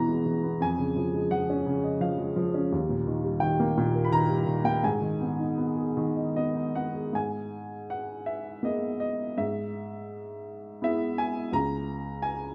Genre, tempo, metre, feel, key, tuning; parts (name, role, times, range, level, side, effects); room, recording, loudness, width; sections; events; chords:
classical, lyrical solo piano; 76-87 BPM; 3/4; rubato; G# minor; A4 = 441 Hz
warm upright piano; solo; 0.0-12.5 s; C#2 to B5; -29 LUFS; equal
moderate recital hall reverb, RT60 1.5 s; close, detailed microphones; -28 LUFS; mono
0.0-7.1 A section; 7.1-12.5 B section
0.0 Eadd9; 0.6 C#add9/E#; 2.7 D#; 4.8 G#m; 7.1 G#madd9; 9.4 E/G#; 11.5 C#5